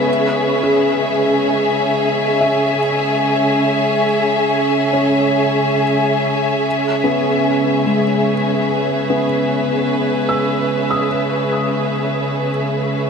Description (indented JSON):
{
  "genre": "ambient",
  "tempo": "free time",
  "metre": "none",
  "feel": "none",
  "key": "C# minor",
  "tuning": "A4 = 441 Hz",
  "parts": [
    { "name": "warm studio string section", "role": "sustained chords", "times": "0.0-13.1 s", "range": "C#3 to G#5", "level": "-16 LUFS", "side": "equal", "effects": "none" },
    { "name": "felt-muted upright piano", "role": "arpeggios", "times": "0.0-13.1 s", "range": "G#3 to E6", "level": "-22 LUFS", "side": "left 1 dB", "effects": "ping-pong delay" },
    { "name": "analog drone", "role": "drone", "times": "0.0-13.1 s", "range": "C#3 to G#3", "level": "-23 LUFS", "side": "equal", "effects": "chorus" }
  ],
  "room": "wet huge ambient reverb, RT60 9.5 s",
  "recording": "none",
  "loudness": "-14 LUFS",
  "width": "side -6 dB against mid",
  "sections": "0.0-13.1 A section",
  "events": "none",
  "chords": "0.0 C#m; 6.7 E/C#"
}